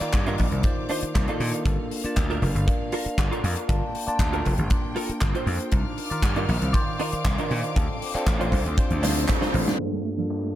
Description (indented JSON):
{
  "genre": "nu-disco, nu disco",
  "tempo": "118 BPM",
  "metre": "4/4",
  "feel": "straight",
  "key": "G minor",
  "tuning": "A4 = 441 Hz",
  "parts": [
    { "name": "bell-like tine electric piano", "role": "accompaniment", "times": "0.0-10.6 s", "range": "G2 to A5", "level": "-29 LUFS", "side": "equal", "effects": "phaser, sidechain pumping, analog delay" },
    { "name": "clear studio string section", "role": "sustained chords", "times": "0.0-10.6 s", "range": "Bb3 to F6", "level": "-38 LUFS", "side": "left 3 dB", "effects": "sidechain pumping" },
    { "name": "slap bass", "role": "bass", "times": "0.0-9.6 s", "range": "F1 to Bb2", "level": "-26 LUFS", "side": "equal", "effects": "sidechain pumping" },
    { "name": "gated 80s drum kit", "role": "drums", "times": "0.0-10.5 s", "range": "crash cymbal, handclaps, hi-hat, snare drum", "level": "-31 LUFS", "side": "equal", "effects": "analog delay" },
    { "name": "kick drum", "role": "drums", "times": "0.1-9.4 s", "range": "none", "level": "-24 LUFS", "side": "equal", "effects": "none" },
    { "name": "direct-recorded clean electric guitar", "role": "riff", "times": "0.3-9.8 s", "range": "D4 to C5", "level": "-32 LUFS", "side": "right 2 dB", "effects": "ensemble chorus, analog delay" },
    { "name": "wide unison pluck", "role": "arpeggios", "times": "9.8-10.5 s", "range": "F3 to A3", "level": "-33 LUFS", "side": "right 7 dB", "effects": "sidechain pumping, tape echo" }
  ],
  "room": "light reverb, studio ambience",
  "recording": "echo-heavy mix, low-pass filter",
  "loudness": "-22 LUFS",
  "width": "side -13 dB against mid",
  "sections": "0.0-9.8 A section",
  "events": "drum fill 9.0-9.8; band accent 9.7",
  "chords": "0.0 Cm11; 1.7 Gm9; 5.7 Cm11; 7.8 Dm7; 9.8 Gm9"
}